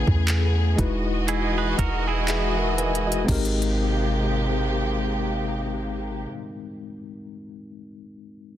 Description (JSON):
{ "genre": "contemporary R&B", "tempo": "60 BPM", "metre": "4/4", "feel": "swing 58% on 16ths", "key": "unclear", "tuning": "A4 = 439 Hz", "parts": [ { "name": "mellow tine electric piano", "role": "accompaniment", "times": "0.0-8.6 s", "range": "G#3 to G#5", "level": "-29 LUFS", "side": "left 3 dB", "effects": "medium stereo tremolo" }, { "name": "dark studio string section", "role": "sustained chords", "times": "0.0-6.3 s", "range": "C3 to D#5", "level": "-28 LUFS", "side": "right 1 dB", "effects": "sidechain pumping" }, { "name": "soft 808-style bass", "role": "bass", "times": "0.0-6.3 s", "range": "E1 to E2", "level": "-25 LUFS", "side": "equal", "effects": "none" }, { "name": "smooth R&B drum kit", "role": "drums", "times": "0.1-3.8 s", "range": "crash cymbal, handclaps, hi-hat, kick drum", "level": "-27 LUFS", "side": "equal", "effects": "overdrive" }, { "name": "clean electric guitar", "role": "arpeggios", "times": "1.3-3.2 s", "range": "E4 to B4", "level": "-29 LUFS", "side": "right 8 dB", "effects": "tape echo" } ], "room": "little or no reverb", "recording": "dense, heavily limited modern master", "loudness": "-21 LUFS", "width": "side -12 dB against mid", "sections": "0.0-3.3 A section; 3.3-7.3 B section", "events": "none", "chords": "0.0 Amaj9; 0.8 Emaj9; 3.3 Abmaj9", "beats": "0.28 1.28 2.28 | 3.28 4.28 5.28 6.28" }